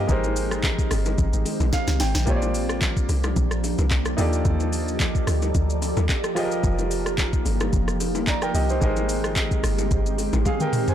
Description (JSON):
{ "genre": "amapiano", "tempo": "110 BPM", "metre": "4/4", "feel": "swing 55% on 16ths", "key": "unclear", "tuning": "A4 = 442 Hz", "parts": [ { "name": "clear concert grand piano", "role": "accompaniment", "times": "0.0-10.9 s", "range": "F3 to Bb5", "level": "-28 LUFS", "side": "right 2 dB", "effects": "none" }, { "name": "glassy FM pad", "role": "sustained chords", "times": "0.0-10.9 s", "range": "Eb3 to D5", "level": "-28 LUFS", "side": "equal", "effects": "ensemble chorus, built-in reverb" }, { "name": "deep log drum bass", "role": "bass", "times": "0.0-10.4 s", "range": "F1 to Eb2", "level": "-24 LUFS", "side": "equal", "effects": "none" }, { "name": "smooth R&B drum kit", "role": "drums", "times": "0.1-10.9 s", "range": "handclaps, hi-hat, kick drum, rim click, shaker, snare drum, toms", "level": "-25 LUFS", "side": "equal", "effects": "none" }, { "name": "congas and bongos", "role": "percussion", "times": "0.1-10.6 s", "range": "none", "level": "-34 LUFS", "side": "left 7 dB", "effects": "none" } ], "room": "little or no reverb", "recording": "blown-out, overdriven recording, overdrive", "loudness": "-20 LUFS", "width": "side -10 dB against mid", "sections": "0.0-10.9 A section", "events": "grand piano fill 1.5-2.3; drum fill 1.7-2.3, 10.5-10.9", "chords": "0.1 Abmaj7; 2.3 Bb6; 4.2 Ebmaj9#11; 6.4 F9sus4; 8.8 Abmaj7" }